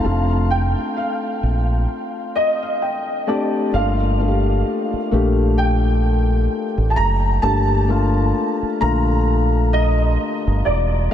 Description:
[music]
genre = contemporary R&B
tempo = 65 BPM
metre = 4/4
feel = swing 58% on 16ths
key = G minor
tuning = A4 = 439 Hz
[part]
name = warm concert grand piano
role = melody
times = 0.0-11.1 s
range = D5 to Bb5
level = -23 LUFS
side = right 1 dB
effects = ensemble chorus, analog delay
[part]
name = felt-muted upright piano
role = accompaniment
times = 0.0-11.1 s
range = D3 to A5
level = -21 LUFS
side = left 4 dB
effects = none
[part]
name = deep dub fingered electric bass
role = bass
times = 0.0-11.1 s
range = E1 to Bb1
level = -18 LUFS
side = equal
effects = none
[sound]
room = moderate huge ambient reverb, RT60 7.4 s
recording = dreamy mix soaked in reverb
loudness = -16 LUFS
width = side -10 dB against mid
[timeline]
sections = 0.0-3.7 A section; 3.7-11.1 B section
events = felt piano fill 1.9-3.7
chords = 0.0 Dm7/F; 3.7 Gm7

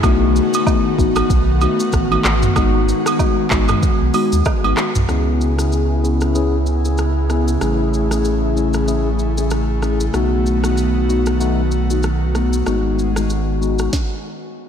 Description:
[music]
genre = afrobeats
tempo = 95 BPM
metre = 4/4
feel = swing 58% on 16ths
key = C# minor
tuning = A4 = 439 Hz
[part]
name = mellow tine electric piano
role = accompaniment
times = 0.0-13.9 s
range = G#3 to G#4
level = -21 LUFS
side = left 5 dB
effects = lush chorus
[part]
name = airy breathy pad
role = sustained chords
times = 0.0-13.9 s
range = C#3 to G#4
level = -21 LUFS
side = equal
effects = chorus, sidechain pumping
[part]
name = warm sub bass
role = bass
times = 0.0-13.9 s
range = G#1 to D#2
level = -19 LUFS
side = equal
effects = none
[part]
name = afro-pop drum kit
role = drums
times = 0.0-14.1 s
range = handclaps, hi-hat, kick drum, rim click, shaker, snare drum, toms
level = -22 LUFS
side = equal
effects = none
[part]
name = agogo bells and woodblock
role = percussion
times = 0.0-4.8 s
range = none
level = -24 LUFS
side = right 7 dB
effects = none
[sound]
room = light reverb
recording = none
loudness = -15 LUFS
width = side -8 dB against mid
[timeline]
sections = 0.0-5.1 A section; 5.1-14.7 B section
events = stop 13.9-14.7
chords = 0.0 B7; 2.6 G#m7; 5.1 C#m7; 7.6 Amaj7; 10.1 B7; 12.7 G#m7

